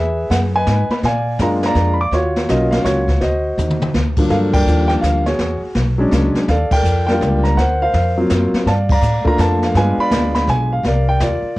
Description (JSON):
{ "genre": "jazz piano trio", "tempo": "165 BPM", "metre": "3/4", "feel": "swing 64% on 8ths", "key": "G minor from 4.3 s", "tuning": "A4 = 440 Hz", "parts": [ { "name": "warm concert grand piano", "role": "melody", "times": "0.0-11.6 s", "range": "G2 to D6", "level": "-17 LUFS", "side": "equal", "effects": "cassette tape" }, { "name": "upright bass", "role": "bass", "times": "0.0-11.6 s", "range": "Cb2 to Bb2", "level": "-18 LUFS", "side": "equal", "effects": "none" }, { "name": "jazz brush drum kit", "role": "drums", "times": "0.3-11.6 s", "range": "brushed snare drum, crash cymbal, hi-hat, kick drum, snare drum, toms", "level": "-21 LUFS", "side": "equal", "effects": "cassette tape" } ], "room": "little or no reverb", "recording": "home recording on cassette", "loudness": "-14 LUFS", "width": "side -18 dB against mid", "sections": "0.0-4.3 A section; 4.3-11.6 B section", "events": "drum fill 3.6-3.9; band accent 4.5, 6.7, 8.8", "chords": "0.0 Emaj9; 1.0 Bb7; 2.1 Ebm9; 3.2 D7b9; 4.3 Gm9; 5.4 E13; 6.5 Ebmaj9#11; 7.6 D7alt; 8.7 Gm9; 9.8 G7b9; 10.8 Cm11" }